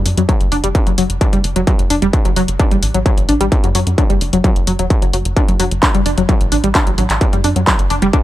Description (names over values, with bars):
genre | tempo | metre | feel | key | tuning
driving peak-time techno | 130 BPM | 4/4 | straight | F# phrygian | A4 = 441 Hz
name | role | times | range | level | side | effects
tight sequencer bass | bass | 0.0-8.1 s | E1 to F#2 | -19 LUFS | equal | sidechain pumping
punchy analog drum machine | drums | 0.1-8.2 s | handclaps, hi-hat | -20 LUFS | left 1 dB | none
tight sequenced synth | riff | 0.2-8.2 s | F#3 to D4 | -18 LUFS | left 1 dB | chorus, sidechain pumping, analog delay
electronic kick drum | drums | 0.3-8.2 s | none | -14 LUFS | equal | distortion, overdrive
room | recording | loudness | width
little or no reverb | dry, gritty hardware recording, transformer saturation | -12 LUFS | side -14 dB against mid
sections
0.0-8.2 A section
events
none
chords
0.0 F#m